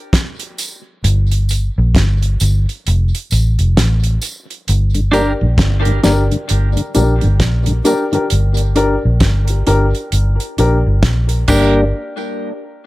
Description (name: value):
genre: dub reggae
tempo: 66 BPM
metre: 4/4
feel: swing 60% on 16ths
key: G minor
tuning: A4 = 440 Hz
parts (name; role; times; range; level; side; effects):
- damped 70s drum kit; drums; 0.1-11.7 s; crash cymbal, hi-hat, kick drum, snare drum; -18 LUFS; equal; none
- tambourine; percussion; 0.6-11.9 s; none; -28 LUFS; right 2 dB; tape echo
- vintage muted fingered electric bass; bass; 1.0-11.9 s; F1 to Bb1; -13 LUFS; equal; none
- mellow tonewheel organ; accompaniment; 4.9-11.8 s; G2 to D4; -21 LUFS; left 1 dB; overdrive, chorus vibrato, slow rotary speaker, tape echo
- clean electric guitar; accompaniment; 5.1-5.3, 11.5-11.8 s; D4 to Bb4; -21 LUFS; right 2 dB; tape echo
- dark upright piano; stabs; 5.1-11.8 s; D4 to Bb4; -19 LUFS; left 2 dB; tape echo
room: light reverb, small room ambience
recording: none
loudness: -12 LUFS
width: side -18 dB against mid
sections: 0.0-4.7 A section; 4.7-11.9 B section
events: break 0.0-4.7; kick muted 2.9-4.7; part muted 8.3-11.9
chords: 0.0 N.C.; 2.9 F; 4.7 Gm; 11.9 N.C.